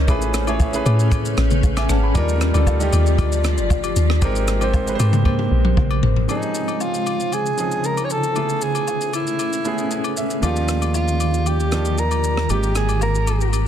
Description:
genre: amapiano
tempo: 116 BPM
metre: 4/4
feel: straight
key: unclear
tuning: A4 = 441 Hz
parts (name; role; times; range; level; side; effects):
- warm concert grand piano; accompaniment; 0.0-13.7 s; F3 to B5; -26 LUFS; right 3 dB; none
- granular cloud pad; sustained chords; 0.0-13.7 s; Db3 to D5; -26 LUFS; equal; built-in reverb, sidechain pumping
- deep log drum bass; bass; 0.0-6.3 s; G1 to A2; -19 LUFS; equal; none
- marimba with medium mallets; stabs; 0.1-6.1 s; F4 to D5; -28 LUFS; left 10 dB; ping-pong delay
- compact cocktail drum kit; drums; 0.1-13.7 s; kick drum, rim click, shaker, toms; -23 LUFS; equal; soft clipping on snare
- agogo bells and woodblock; percussion; 0.1-13.7 s; none; -32 LUFS; left 11 dB; none
- breathy alto saxophone; melody; 6.3-13.5 s; Eb4 to Db5; -23 LUFS; right 1 dB; ping-pong delay
- modern bright fingered electric bass; bass; 10.4-13.7 s; Ab1 to Eb2; -20 LUFS; equal; none
room: little or no reverb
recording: dense, heavily limited modern master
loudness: -17 LUFS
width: side -10 dB against mid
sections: 0.0-6.3 A section; 6.3-13.7 B section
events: drop 0.0-6.3; drum fill 5.3-6.3; grand piano fill 9.7-10.4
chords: 0.1 Amaj9; 2.2 Ebmaj9; 4.2 Abmaj9; 6.3 Dbmaj9; 8.4 Amaj9; 10.4 Ebmaj9; 12.5 Abmaj9

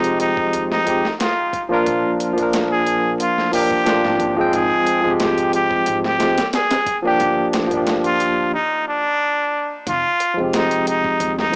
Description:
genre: trip hop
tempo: 90 BPM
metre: 4/4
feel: swing 53% on 16ths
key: F dorian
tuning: A4 = 440 Hz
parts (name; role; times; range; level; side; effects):
- trumpet with straight mute; melody; 0.0-11.6 s; D4 to Ab4; -19 LUFS; equal; tape echo
- barky tine electric piano; accompaniment; 0.0-11.6 s; F3 to G5; -19 LUFS; equal; harmonic tremolo, low-pass filter, tape echo
- upright bass; bass; 0.0-11.6 s; F1 to Ab2; -34 LUFS; equal; none
- dusty soul sampler-style drum kit; drums; 0.0-11.6 s; hi-hat, kick drum, snare drum; -24 LUFS; equal; overdrive
room: small room ambience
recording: dry, gritty hardware recording, cassette tape, small speaker sound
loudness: -16 LUFS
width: side -34 dB against mid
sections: 0.0-9.9 A section; 9.9-11.6 A section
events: break 8.5-9.9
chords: 0.0 Fmadd9; 7.2 Gm7; 9.9 Fmadd9

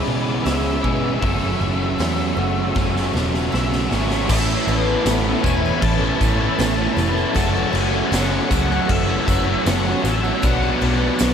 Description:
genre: rock, shoegaze and dream pop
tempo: 78 BPM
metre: 4/4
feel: straight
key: unclear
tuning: A4 = 440 Hz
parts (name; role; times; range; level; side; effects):
- octave-fuzz lead guitar; melody; 0.0-11.2 s; C#5 to A5; -29 LUFS; equal; distortion, analog delay
- picked twelve-string acoustic guitar; arpeggios; 0.0-11.3 s; E3 to G#4; -30 LUFS; left 5 dB; lush chorus, analog delay
- biting overdriven guitar; riff; 0.0-11.3 s; F#2 to F#4; -25 LUFS; left 7 dB; ensemble chorus
- crunchy overdriven guitar; riff; 0.0-11.3 s; F#2 to F#4; -26 LUFS; equal; none
- overdriven semi-hollow guitar; riff; 0.0-11.3 s; F#2 to A4; -25 LUFS; right 10 dB; reverse reverb
- vintage muted picked electric bass; bass; 0.0-11.3 s; E1 to B2; -23 LUFS; equal; none
- raw garage drum kit; drums; 0.5-11.3 s; crash cymbal, hi-hat, kick drum, snare drum; -23 LUFS; equal; none
- phased analog pad; sustained chords; 4.6-11.3 s; A4 to D6; -31 LUFS; left 1 dB; phaser, chorus
- tambourine; percussion; 4.3-11.3 s; none; -36 LUFS; right 11 dB; none
room: moderate huge ambient reverb, RT60 6.2 s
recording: dreamy mix soaked in reverb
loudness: -17 LUFS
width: side -8 dB against mid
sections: 0.0-4.3 A section; 4.3-11.3 B section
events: drum fill 2.8-4.3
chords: 0.0 C#m7; 1.2 F#m7; 4.3 Aadd9; 7.4 F#m7; 10.4 Bm

